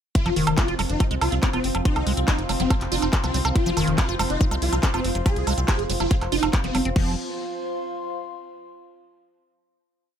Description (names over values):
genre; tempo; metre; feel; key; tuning
psychedelic trance; 141 BPM; 4/4; straight; unclear; A4 = 440 Hz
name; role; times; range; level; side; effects
swarming rave lead; melody; 0.2-7.1 s; C4 to Ab4; -28 LUFS; equal; chorus, phaser, cassette tape, sidechain pumping, digital delay
bubbling stepped-filter texture; sustained chords; 0.2-7.0 s; F3 to C4; -34 LUFS; right 1 dB; chorus, built-in reverb, sidechain pumping
electronic kick drum; drums; 0.2-7.0 s; none; -21 LUFS; equal; small room ambience
garage drum kit; drums; 0.2-7.0 s; crash cymbal, handclaps, hi-hat, woodblock; -28 LUFS; right 2 dB; small room ambience
warbly tape-like pad; texture; 0.9-8.6 s; F4 to C6; -33 LUFS; equal; chorus, built-in reverb, sidechain pumping
liquid acid bass; riff; 0.3-7.2 s; Eb3 to F4; -28 LUFS; moving between left 3 dB and right 6 dB; phaser, auto-pan, sidechain pumping, dub echo
round analog bass; bass; 0.3-7.2 s; F1 to C2; -26 LUFS; equal; none
room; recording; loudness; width
little or no reverb; none; -20 LUFS; side -8 dB against mid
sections
0.2-7.0 drop; 7.0-8.7 final chord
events
drop 0.2-7.0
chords
0.2 F5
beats
| 0.15 0.58 1.00 1.43 | 1.85 2.28 2.70 3.13 | 3.56 3.98 4.41 4.83 | 5.26 5.68 6.11 6.53 | 6.96 7.38 7.81 8.24